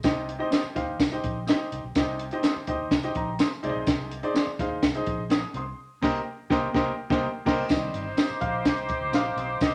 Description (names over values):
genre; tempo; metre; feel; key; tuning
uptempo 1960s-style soul; 125 BPM; 4/4; straight; C minor; A4 = 442 Hz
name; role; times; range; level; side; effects
clear upright piano; accompaniment; 0.0-9.7 s; C3 to Eb6; -32 LUFS; equal; none
vintage muted fingered electric bass; bass; 0.0-9.7 s; G1 to Eb2; -39 LUFS; equal; none
compact cocktail drum kit; drums; 0.0-9.7 s; crash cymbal, hi-hat, kick drum, snare drum; -28 LUFS; equal; none
tambourine; percussion; 0.0-9.7 s; none; -46 LUFS; equal; none
mellow electric guitar; stabs; 0.5-9.5 s; Bb3 to C5; -36 LUFS; equal; none
warm horn section; second line; 7.7-9.7 s; Eb4 to C5; -32 LUFS; equal; none
room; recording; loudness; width
moderate studio reverb, RT60 0.8 s; none; -27 LUFS; mono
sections
0.0-7.7 A section; 7.7-9.7 B section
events
band accent 5.8-7.7; upright piano solo 7.7-9.7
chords
0.0 Cm; 3.6 Ab; 5.8 Cm7; 7.7 Cm